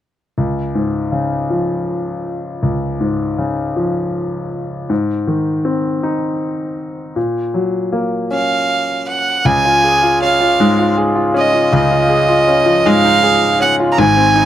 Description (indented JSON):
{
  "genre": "pop",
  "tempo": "53 BPM (dotted quarters)",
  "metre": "6/8",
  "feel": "straight",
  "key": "Db major",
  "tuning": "A4 = 440 Hz",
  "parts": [
    { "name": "bright concert grand piano", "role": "accompaniment", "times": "0.4-14.5 s", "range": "Ab1 to Ab4", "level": "-15 LUFS", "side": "left 1 dB", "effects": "none" },
    { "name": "clear violin", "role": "melody", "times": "8.3-14.5 s", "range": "Eb5 to Bb5", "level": "-13 LUFS", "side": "right 3 dB", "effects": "none" }
  ],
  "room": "little or no reverb",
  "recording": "dry, close 1970s-style studio recording",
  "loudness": "-13 LUFS",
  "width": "side -11 dB against mid",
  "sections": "0.4-9.4 A section; 9.4-14.5 B section",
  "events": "none",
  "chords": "0.4 Db; 4.9 Ab; 7.2 Gb/Bb; 9.4 Dbadd9",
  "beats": "| 0.37 1.51 | 2.64 3.77 | 4.90 6.03 | 7.16 8.30 | 9.45 10.59 | 11.72 12.85 | 13.97"
}